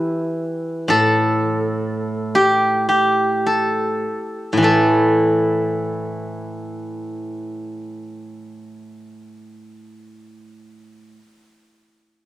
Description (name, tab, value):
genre	chinese traditional, Chinese solo plucked strings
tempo	49-72 BPM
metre	4/4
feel	rubato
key	unclear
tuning	A4 = 440 Hz
part	steel-string zither	solo	0.0-11.2 s	A2 to A4	-18 LUFS	equal	none
room	light reverb, small room ambience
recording	home recording on cassette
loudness	-16 LUFS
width	side -15 dB against mid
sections	0.0-4.6 A section; 4.6-9.2 B section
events	slowing down 0.0-4.6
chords	none